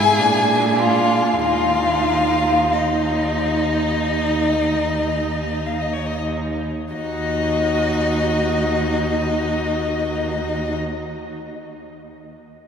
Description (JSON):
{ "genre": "classical, slow romantic movement for string quartet", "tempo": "free time", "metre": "none", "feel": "none", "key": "Eb minor", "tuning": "A4 = 440 Hz", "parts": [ { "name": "warm violin", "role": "melody", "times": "0.0-10.8 s", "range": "Db5 to G#5", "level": "-22 LUFS", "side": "left 4 dB", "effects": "none" }, { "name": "rich violin", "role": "second line", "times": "0.0-10.8 s", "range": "Eb4 to G#4", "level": "-24 LUFS", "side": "left 2 dB", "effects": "none" }, { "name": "rich viola", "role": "accompaniment", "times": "0.0-10.8 s", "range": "D4 to Gb4", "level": "-26 LUFS", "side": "right 3 dB", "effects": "none" }, { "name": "rich cello", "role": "bass", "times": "0.0-10.8 s", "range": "Eb2 to Bb2", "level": "-24 LUFS", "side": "right 2 dB", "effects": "none" } ], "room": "wet cathedral reverb, RT60 5.8 s", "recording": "minimal, uncompressed stereo recording", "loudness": "-17 LUFS", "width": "side -7 dB against mid", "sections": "0.0-6.9 A section; 6.9-12.7 B section", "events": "slowing down 0.0-6.9", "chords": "0.2 Bb; 1.4 Ebsus2; 6.9 Ebm", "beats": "free time" }